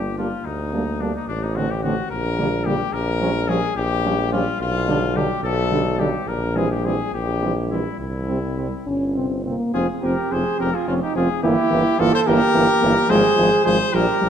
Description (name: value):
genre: classical, brass quintet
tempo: 72 BPM (dotted quarters)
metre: 6/8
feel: straight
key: F minor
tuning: A4 = 441 Hz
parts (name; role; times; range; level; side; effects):
- clear trumpet; melody; 0.0-14.3 s; D4 to C5; -24 LUFS; left 5 dB; none
- clear bass trombone; bass; 0.0-14.3 s; F1 to D2; -24 LUFS; right 1 dB; none
- mellow flugelhorn; second line; 0.2-14.3 s; Bb3 to A4; -24 LUFS; right 4 dB; none
- mellow French horn; accompaniment; 0.2-14.3 s; G3 to Db4; -25 LUFS; left 2 dB; none
- mellow trombone; accompaniment; 0.2-14.3 s; C3 to G3; -27 LUFS; right 3 dB; none
room: wet scoring stage reverb, RT60 1.7 s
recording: dark, warm production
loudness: -18 LUFS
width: side -8 dB against mid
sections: 0.0-9.7 A section; 9.7-14.3 B section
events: none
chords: 0.0 Gm; 1.3 D5/A; 2.1 Gm/Bb; 2.9 Gm7b5/Bb; 4.6 G7/B; 6.3 C7/Bb; 8.0 C; 9.7 F5; 11.4 Edim/G; 13.1 Fm/Ab